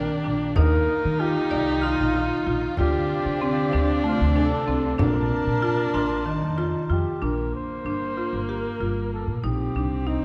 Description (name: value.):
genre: contemporary instrumental, chamber music in an uneven meter.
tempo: 190 BPM (eighths).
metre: 7/8.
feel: straight.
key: Bb major.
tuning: A4 = 441 Hz.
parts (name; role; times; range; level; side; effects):
warm flugelhorn; melody; 0.0-10.2 s; Eb4 to C5; -31 LUFS; equal; none.
dark viola; second line; 0.0-10.2 s; Bb3 to Eb4; -30 LUFS; equal; none.
rich studio string section; sustained chords; 0.0-7.2 s; C3 to A5; -37 LUFS; equal; none.
buzzing marimba with medium hard mallets; arpeggios; 0.0-10.2 s; Eb3 to D5; -30 LUFS; equal; none.
upright bass; bass; 0.0-10.2 s; G1 to Eb3; -29 LUFS; equal; none.
frame drum; percussion; 0.6-7.1 s; none; -34 LUFS; equal; none.
glockenspiel with brass mallets; texture; 1.8-7.5 s; C6 to F6; -39 LUFS; equal; none.
room: wet concert hall reverb, RT60 1.9 s.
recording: dark, warm production.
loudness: -24 LUFS.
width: mono.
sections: 0.0-7.2 A section; 7.2-10.2 B section.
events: none.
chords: 0.0 Bb6; 0.6 Ebsus2; 2.8 Dm7; 5.0 Bbmaj7; 7.2 Bb; 9.4 Eb/Bb.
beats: 0.25 | 0.57 0.88 1.20 1.52 1.83 2.15 2.47 | 2.78 3.10 3.42 3.73 4.05 4.37 4.68 | 5.00 5.32 5.63 5.95 6.26 6.58 6.90 | 7.21 7.53 7.85 8.16 8.48 8.80 9.12 | 9.43 9.75 10.07.